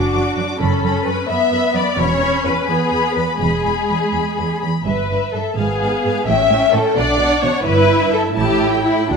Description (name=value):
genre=quick classical-period movement for string orchestra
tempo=85 BPM (dotted quarters)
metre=6/8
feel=rubato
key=unclear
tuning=A4 = 439 Hz
part: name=rich studio violin section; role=melody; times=0.0-9.2 s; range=E5 to D6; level=-24 LUFS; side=left 6 dB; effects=none
part: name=warm symphonic violin section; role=second line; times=0.0-9.2 s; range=D4 to E5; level=-18 LUFS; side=left 3 dB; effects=none
part: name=warm symphonic viola section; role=accompaniment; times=0.0-9.2 s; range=G#3 to F#4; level=-22 LUFS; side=right 2 dB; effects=none
part: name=rich symphonic double bass section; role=bass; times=0.0-9.2 s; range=E1 to D2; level=-24 LUFS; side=right 4 dB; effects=none
part: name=warm studio cello section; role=bass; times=0.1-9.2 s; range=E2 to D3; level=-23 LUFS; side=right 4 dB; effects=none
room=wet recital hall reverb, RT60 1.3 s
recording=minimal, uncompressed stereo recording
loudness=-15 LUFS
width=side -5 dB against mid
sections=0.0-9.2 A section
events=none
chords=0.0 D/F#; 0.6 B5/F#; 2.0 E; 4.9 Em/G; 5.6 G#m6; 6.3 A7; 7.0 Bm; 7.7 Em/G; 8.4 A5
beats=| 0.60 1.28 | 1.97 2.68 | 3.40 4.13 | 4.86 5.58 | 6.28 6.96 | 7.65 8.37 | 9.10